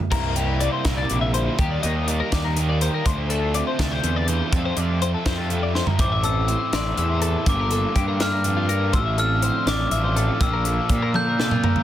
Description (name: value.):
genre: math rock and midwest emo.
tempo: 82 BPM (dotted quarters).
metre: 6/8.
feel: straight.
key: unclear.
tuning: A4 = 439 Hz.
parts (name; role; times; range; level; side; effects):
twelve-string electric guitar; accompaniment; 0.1-11.8 s; F2 to Bb4; -30 LUFS; right 6 dB; wide subtle chorus.
twelve-string electric guitar; arpeggios; 0.1-11.8 s; F4 to E5; -28 LUFS; left 7 dB; wide subtle chorus.
overdriven electric guitar; riff; 0.1-11.8 s; F2 to F4; -30 LUFS; right 1 dB; none.
fuzz picked electric bass; bass; 0.1-11.8 s; G1 to Bb2; -24 LUFS; equal; overdrive.
crisp fusion drum kit; drums; 0.1-11.8 s; crash cymbal, hi-hat, kick drum, snare drum, toms; -24 LUFS; equal; none.
glockenspiel with soft plastic mallets; melody; 6.0-11.7 s; C6 to G6; -25 LUFS; left 2 dB; none.
room: little or no reverb.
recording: dense, heavily limited modern master.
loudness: -19 LUFS.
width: side -12 dB against mid.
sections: 0.0-6.0 A section; 6.0-11.8 B section.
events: drum fill 5.8, 11.1-11.8.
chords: 0.1 C7; 1.6 Ebmaj7; 3.1 Dm7; 4.5 F6; 6.0 Am7; 7.5 Gm9; 8.9 Dm9/A; 10.4 Bbmaj9#11.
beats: | 0.12 0.85 | 1.58 2.32 | 3.06 3.79 | 4.53 5.26 | 6.00 6.73 | 7.47 8.20 | 8.94 9.68 | 10.41 11.15.